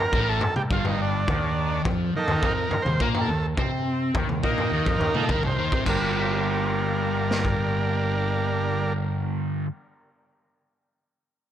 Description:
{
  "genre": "psychedelic rock",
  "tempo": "105 BPM",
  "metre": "4/4",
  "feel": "straight",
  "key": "G minor",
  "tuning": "A4 = 440 Hz",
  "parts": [
    { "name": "combo organ", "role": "sustained chords", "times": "0.0-8.9 s", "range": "Eb3 to C5", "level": "-27 LUFS", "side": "right 2 dB", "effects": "none" },
    { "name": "fuzz guitar", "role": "riff", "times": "0.1-9.7 s", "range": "G2 to C4", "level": "-27 LUFS", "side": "equal", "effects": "distortion, phaser" },
    { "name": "fingered electric bass", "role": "bass", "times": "0.1-9.6 s", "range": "G1 to C3", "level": "-31 LUFS", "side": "left 1 dB", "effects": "none" },
    { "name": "raw garage drum kit", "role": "drums", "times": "0.1-7.6 s", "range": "crash cymbal, kick drum, snare drum, toms", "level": "-27 LUFS", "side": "equal", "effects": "none" }
  ],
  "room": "moderate spring reverb, RT60 2.6 s",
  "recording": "none",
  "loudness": "-22 LUFS",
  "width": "side -10 dB against mid",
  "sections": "0.0-5.9 A section; 5.9-8.2 B section",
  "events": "transistor combo organ solo 0.0-5.9",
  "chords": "0.0 Gm; 1.3 Eb5; 5.9 Gm"
}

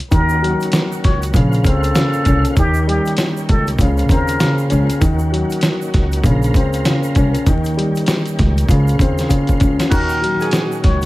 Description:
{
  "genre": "hip hop, boom-bap hip-hop",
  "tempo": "98 BPM",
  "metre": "4/4",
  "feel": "swing 61% on 16ths",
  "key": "unclear",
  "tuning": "A4 = 445 Hz",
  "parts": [
    { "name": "dusty soul sampler-style drum kit", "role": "drums", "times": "0.0-11.1 s", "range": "crash cymbal, hi-hat, kick drum, snare drum", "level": "-17 LUFS", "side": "equal", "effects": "none" },
    { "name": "trumpet with plunger mute", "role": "melody", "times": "0.1-4.6, 9.9-11.0 s", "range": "G4 to Db5", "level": "-22 LUFS", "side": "left 1 dB", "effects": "tape echo" },
    { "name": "dark concert grand piano", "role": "accompaniment", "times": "0.1-11.1 s", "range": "Db3 to Db4", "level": "-18 LUFS", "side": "left 1 dB", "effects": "none" },
    { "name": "tonewheel organ", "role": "sustained chords", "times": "0.1-11.1 s", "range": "Bb2 to F5", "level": "-26 LUFS", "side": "right 2 dB", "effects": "chorus vibrato, fast rotary speaker" },
    { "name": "upright bass", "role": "bass", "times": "0.1-11.1 s", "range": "Bb1 to Eb2", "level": "-18 LUFS", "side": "equal", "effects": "none" },
    { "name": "egg shaker", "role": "percussion", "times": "0.1-11.1 s", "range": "none", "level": "-38 LUFS", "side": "right 6 dB", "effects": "none" },
    { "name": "dark saxophone section", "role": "stabs", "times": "9.9-10.8 s", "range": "Eb3 to Ab4", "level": "-25 LUFS", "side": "right 3 dB", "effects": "none" }
  ],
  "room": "small room reverb",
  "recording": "vinyl crackle",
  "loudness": "-13 LUFS",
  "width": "side -18 dB against mid",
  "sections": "0.0-9.9 A section; 9.9-11.1 B section",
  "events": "drum fill 9.3-9.9",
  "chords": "0.1 Ebm7; 1.3 Bbmadd9; 2.6 Eb7; 3.8 Bbmadd9/Db; 5.0 Ebm7; 6.2 Bbmadd9; 7.5 Eb7; 8.7 Bbmadd9/Db; 9.9 Ebm7"
}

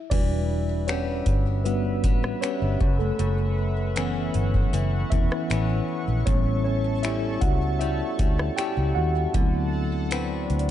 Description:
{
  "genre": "contemporary R&B",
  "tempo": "78 BPM",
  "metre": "4/4",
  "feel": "straight",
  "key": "unclear",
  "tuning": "A4 = 436 Hz",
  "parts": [
    { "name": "mellow tine electric piano", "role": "accompaniment", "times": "0.0-10.7 s", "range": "E3 to G5", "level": "-28 LUFS", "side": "equal", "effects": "medium stereo tremolo" },
    { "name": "chorused pulse-width pad", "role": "sustained chords", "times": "0.1-10.7 s", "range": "A4 to C#6", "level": "-37 LUFS", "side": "equal", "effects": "none" },
    { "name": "picked swing-style acoustic guitar", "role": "arpeggios", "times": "0.1-10.7 s", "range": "F#2 to B4", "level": "-34 LUFS", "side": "left 9 dB", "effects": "digital delay" },
    { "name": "vintage muted fingered electric bass", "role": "bass", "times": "0.1-10.7 s", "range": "E1 to Eb2", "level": "-25 LUFS", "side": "equal", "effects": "none" },
    { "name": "booming analog drum machine", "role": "drums", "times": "0.1-10.7 s", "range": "crash cymbal, finger snaps, hi-hat, kick drum, rim click", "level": "-24 LUFS", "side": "equal", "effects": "none" },
    { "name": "swell", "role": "sound effects", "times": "9.8-10.7 s", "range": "none", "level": "-36 LUFS", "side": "left 3 dB", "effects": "none" }
  ],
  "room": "little or no reverb",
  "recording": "dark, warm production, nothing above 11.0 kHz",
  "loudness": "-22 LUFS",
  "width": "side -11 dB against mid",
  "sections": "0.1-10.7 A section",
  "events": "tine electric piano solo 0.1-10.7; swell 9.8-10.7",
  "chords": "0.1 Em7; 2.8 F#7sus4; 6.3 A7; 9.3 D13"
}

